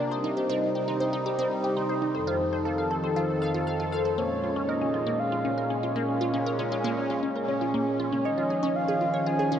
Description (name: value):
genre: ambient, sequencer-driven space music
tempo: 118 BPM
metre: 4/4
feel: straight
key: Bb minor from 4.2 s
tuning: A4 = 438 Hz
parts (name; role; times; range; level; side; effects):
- sweeping resonant pad; sustained chords; 0.0-9.6 s; F2 to A4; -28 LUFS; right 1 dB; chorus
- vibraphone with soft mallets; arpeggios; 0.0-4.1 s; A4 to Eb6; -32 LUFS; left 3 dB; auto-pan, analog delay
- resonant blip pluck; riff; 0.0-9.6 s; Bb3 to F5; -31 LUFS; equal; phaser, vintage 12-bit sampler grit, analog delay
- breathy flute-like synth lead; melody; 3.9-9.6 s; C5 to Ab5; -30 LUFS; right 1 dB; chorus, analog delay
room: wet huge ambient reverb, RT60 7.8 s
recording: worn, warbling old tape, cassette tape, warbly pitch drift, nothing above 10.6 kHz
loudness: -25 LUFS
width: side -9 dB against mid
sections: 0.0-4.2 A section; 4.2-9.6 B section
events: none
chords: 0.1 Cm; 2.1 F7; 4.2 Bbm7; 8.2 Dbadd9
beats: | 0.11 0.62 1.13 1.64 | 2.15 2.65 3.16 3.67 | 4.18 4.69 5.20 5.71 | 6.21 6.72 7.23 7.74 | 8.25 8.76 9.27